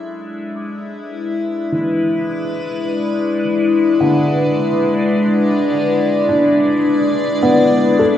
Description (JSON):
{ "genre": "ambient", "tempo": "52 BPM", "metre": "4/4", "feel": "straight", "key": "E mixolydian", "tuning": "A4 = 440 Hz", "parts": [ { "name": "evolving wavetable pad", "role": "sustained chords", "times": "0.0-8.2 s", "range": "G3 to E5", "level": "-15 LUFS", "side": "left 1 dB", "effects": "phaser, built-in reverb" }, { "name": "felt-muted upright piano", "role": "arpeggios", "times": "0.0-8.2 s", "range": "D3 to D6", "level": "-19 LUFS", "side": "equal", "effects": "diffuse ambient delay" } ], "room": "wet lush hall reverb, RT60 2.9 s", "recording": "worn, warbling old tape, cassette tape, warbly pitch drift", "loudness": "-13 LUFS", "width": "side -10 dB against mid", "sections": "0.0-8.2 A section", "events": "fade-in on ambient pad 0.0-8.2; fade-in on felt piano 0.0-8.2", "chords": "0.0 E7", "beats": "1.14 2.29 | 3.43 4.57 5.72 6.86 | 8.00" }